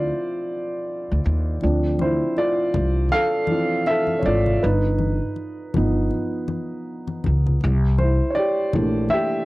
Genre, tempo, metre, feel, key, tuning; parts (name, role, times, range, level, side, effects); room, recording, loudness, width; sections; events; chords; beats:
R&B, neo-soul; 80 BPM; 4/4; swing 61% on 16ths; A4 = 440 Hz
dark grand piano; accompaniment; 0.0-9.4 s; E3 to F5; -22 LUFS; right 1 dB; cassette tape
upright bass; bass; 0.0-9.1 s; G1 to Eb2; -21 LUFS; equal
congas; percussion; 1.6-9.3 s; -28 LUFS; left 3 dB
light reverb; home recording on cassette; -19 LUFS; side -19 dB against mid
0.0-1.6 A section; 1.6-9.4 B section
grand piano solo 0.0-1.6, 1.6-9.4
0.0 Dm9; 4.6 Gaug7; 7.6 C13
0.11 0.86 | 1.61 2.36 3.11 3.86 | 4.61 5.36 6.11 6.86 | 7.61 8.36 9.11